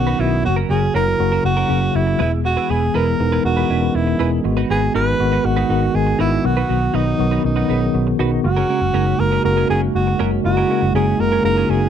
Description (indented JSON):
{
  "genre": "pop",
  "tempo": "120 BPM",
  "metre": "4/4",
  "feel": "straight",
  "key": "unclear",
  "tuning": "A4 = 440 Hz",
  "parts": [
    { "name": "breathy alto saxophone", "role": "melody", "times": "0.0-11.9 s", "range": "D#4 to B4", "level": "-21 LUFS", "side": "right 3 dB", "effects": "none" },
    { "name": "mellow tine electric piano", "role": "accompaniment", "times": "0.0-11.9 s", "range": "C#3 to A#4", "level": "-19 LUFS", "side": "left 1 dB", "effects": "medium stereo tremolo" },
    { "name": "vintage muted fingered electric bass", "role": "bass", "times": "0.0-11.9 s", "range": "E1 to B1", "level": "-21 LUFS", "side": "equal", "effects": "none" },
    { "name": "direct-recorded clean electric guitar", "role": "riff", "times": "0.1-11.9 s", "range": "C#4 to B4", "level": "-28 LUFS", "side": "right 7 dB", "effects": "analog chorus" },
    { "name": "chorused pulse-width pad", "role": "sustained chords", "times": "8.4-11.9 s", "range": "G#3 to F#4", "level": "-25 LUFS", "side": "equal", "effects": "none" }
  ],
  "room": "light reverb",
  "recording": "dry, close 1970s-style studio recording",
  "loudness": "-15 LUFS",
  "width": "side -9 dB against mid",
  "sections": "0.0-8.4 A section; 8.4-11.9 B section",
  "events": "none",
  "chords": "0.4 F#; 2.2 E; 4.4 G#m7; 6.4 B; 8.4 F#add9",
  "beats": "| 0.44 0.94 1.44 1.94 | 2.44 2.94 3.44 3.94 | 4.44 4.94 5.44 5.94 | 6.44 6.94 7.44 7.94 | 8.44 8.94 9.44 9.94 | 10.44 10.94 11.44"
}